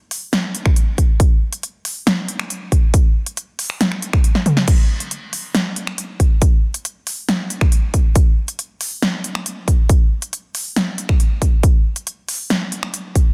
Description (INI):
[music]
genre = dubstep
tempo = 138 BPM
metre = 4/4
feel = half-time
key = none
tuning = none
[part]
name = big-room dance drum kit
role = drums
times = 0.1-13.2 s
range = crash cymbal, finger snaps, hi-hat, snare drum, toms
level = -23 LUFS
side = equal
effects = overdrive
[part]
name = electronic kick drum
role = drums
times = 0.7-13.2 s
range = none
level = -15 LUFS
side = equal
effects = none
[sound]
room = light reverb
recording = dense, heavily limited modern master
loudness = -18 LUFS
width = mono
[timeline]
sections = 0.0-13.3 A section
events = kick drops out 4.2-4.7; drum fill 4.4-4.7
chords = none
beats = 0.33 0.76 | 1.20 1.63 2.07 2.50 | 2.94 3.37 3.81 4.24 | 4.68 5.11 5.55 5.98 | 6.42 6.85 7.29 7.72 | 8.15 8.59 9.02 9.46 | 9.89 10.33 10.76 11.20 | 11.63 12.07 12.50 12.94